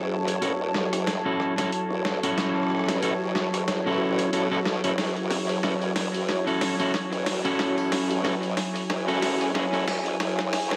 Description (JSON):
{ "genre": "glitch hop", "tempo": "92 BPM", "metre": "4/4", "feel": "swing 57% on 16ths", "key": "F# minor", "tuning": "A4 = 440 Hz", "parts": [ { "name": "warm analog pad", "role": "sustained chords", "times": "0.0-10.8 s", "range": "F#3 to C#5", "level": "-34 LUFS", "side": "equal", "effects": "chorus" }, { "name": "formant-sweep wobble bass", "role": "bass", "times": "0.0-10.8 s", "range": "E1 to B1", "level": "-32 LUFS", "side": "equal", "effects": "chorus, high-pass filter" }, { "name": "granular cloud pad", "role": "texture", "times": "0.0-10.8 s", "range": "F#4 to A5", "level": "-34 LUFS", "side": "equal", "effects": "built-in reverb" }, { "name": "boom bap sampler-style drum kit", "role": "drums", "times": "0.3-10.8 s", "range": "hi-hat, rim click, snare drum", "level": "-33 LUFS", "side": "equal", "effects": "high-pass filter on snare, high-pass filter on hats, high-pass filter on room, tape echo" }, { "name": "electric guitar at the edge of break-up", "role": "stabs", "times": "0.4-9.8 s", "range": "C#4 to A4", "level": "-30 LUFS", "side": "equal", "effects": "low-pass filter, tape echo" } ], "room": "wet spring reverb, RT60 1.5 s, digital ambience", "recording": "echo-heavy mix, vinyl crackle, high-pass filter", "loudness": "-26 LUFS", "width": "mono", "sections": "0.0-10.8 A section", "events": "build-up 0.0-10.8; drum fill 0.0-10.8", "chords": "0.0 F#m7" }